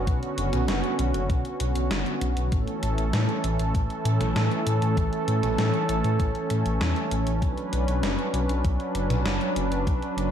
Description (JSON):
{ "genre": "synthwave", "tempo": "98 BPM", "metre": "4/4", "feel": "straight", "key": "B minor", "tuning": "A4 = 439 Hz", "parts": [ { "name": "warm analog pad", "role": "sustained chords", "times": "0.0-10.3 s", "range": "D3 to B4", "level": "-26 LUFS", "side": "right 1 dB", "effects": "chorus, sidechain pumping" }, { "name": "dark detuned saw bass", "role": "bass", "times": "0.0-10.3 s", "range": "F#1 to A2", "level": "-26 LUFS", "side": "left 1 dB", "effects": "sidechain pumping" }, { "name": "electronic kick drum", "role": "drums", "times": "0.1-10.0 s", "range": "none", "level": "-26 LUFS", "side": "left 1 dB", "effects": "none" }, { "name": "gated 80s digital drum machine", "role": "drums", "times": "0.1-10.3 s", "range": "hi-hat, snare drum, toms", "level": "-32 LUFS", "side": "left 1 dB", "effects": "gated reverb, gated reverb snare" } ], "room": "moderate plate reverb, RT60 2.5 s", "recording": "dreamy mix soaked in reverb", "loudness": "-23 LUFS", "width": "side -9 dB against mid", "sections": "0.0-10.3 A section", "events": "none", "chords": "0.0 Bmadd9; 2.5 A; 7.4 Bmadd9" }